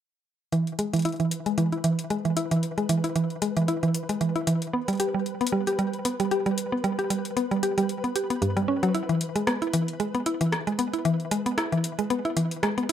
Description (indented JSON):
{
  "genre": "IDM",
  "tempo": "114 BPM",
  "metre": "4/4",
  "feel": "swing 56% on 16ths",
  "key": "unclear",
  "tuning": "A4 = 440 Hz",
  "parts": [
    { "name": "mallet-like synth pluck", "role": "arpeggios", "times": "0.5-12.9 s", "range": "G2 to G4", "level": "-24 LUFS", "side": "equal", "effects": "chorus, digital delay" },
    { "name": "booming analog drum machine", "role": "drums", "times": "0.5-12.9 s", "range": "hi-hat, rim click", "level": "-32 LUFS", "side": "left 2 dB", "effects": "none" },
    { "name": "flickering grainy texture", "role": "texture", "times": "1.1-12.9 s", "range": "B4", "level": "-38 LUFS", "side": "left 1 dB", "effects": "built-in reverb" }
  ],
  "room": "light reverb, digital ambience",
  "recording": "rough home demo mix",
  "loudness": "-24 LUFS",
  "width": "side -10 dB against mid",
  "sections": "0.5-12.9 A section",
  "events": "filter sweep on synth arpeggio sound 0.5-12.9",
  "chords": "0.5 E; 4.7 G; 8.9 E"
}